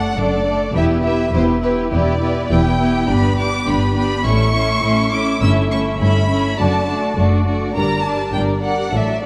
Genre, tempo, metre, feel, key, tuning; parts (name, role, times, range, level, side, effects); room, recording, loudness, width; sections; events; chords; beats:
quick classical-period movement for string orchestra; 103 BPM; 4/4; rubato; A4 = 439 Hz
rich chamber violin section; melody; 0.0-9.3 s; B4 to E6; -24 LUFS; equal
rich chamber violin section; second line; 0.0-9.3 s; E4 to E5; -26 LUFS; equal
rich chamber viola section; accompaniment; 0.0-9.3 s; F#3 to E4; -22 LUFS; equal
rich chamber double bass section; bass; 0.0-9.3 s; E1 to A1; -23 LUFS; equal
rich studio cello section; bass; 0.0-9.3 s; E2 to A2; -25 LUFS; equal
wet concert hall reverb, RT60 2.1 s; dark, warm production; -17 LUFS; mono
0.0-9.3 A section
0.0 D/F#; 0.8 Em; 3.1 G; 4.3 A; 5.4 A7/G; 6.6 D/F#; 7.8 Gm
0.17 | 0.76 1.34 1.92 2.50 | 3.09 3.67 4.26 4.83 | 5.42 6.00 6.59 7.18 | 7.76 8.34 8.93